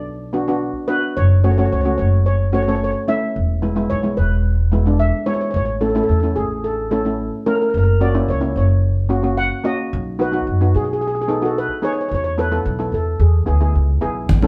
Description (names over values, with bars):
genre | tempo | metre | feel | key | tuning
calypso | 110 BPM | 4/4 | straight | unclear | A4 = 439 Hz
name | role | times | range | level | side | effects
steel pan | melody | 0.0-14.0 s | G#4 to F#5 | -25 LUFS | equal | none
steel pan | accompaniment | 0.0-14.5 s | G#3 to A4 | -24 LUFS | equal | none
upright bass | bass | 0.0-14.5 s | E1 to F#2 | -20 LUFS | equal | none
congas | percussion | 14.3-14.5 s | none | -17 LUFS | equal | none
room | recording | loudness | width
moderate studio reverb, RT60 0.5 s | heard from further back in the room | -18 LUFS | mono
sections
0.0-14.3 A section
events
none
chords
0.0 Bm; 1.2 F#m; 3.4 E; 5.5 A; 7.7 F#; 9.9 B; 12.1 Esus4; 13.2 E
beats
0.07 0.62 | 1.17 1.71 2.26 2.81 | 3.36 3.90 4.45 5.00 | 5.55 6.09 6.64 7.19 | 7.74 8.28 8.83 9.38 | 9.93 10.47 11.02 11.57 | 12.11 12.66 13.21 13.75 | 14.30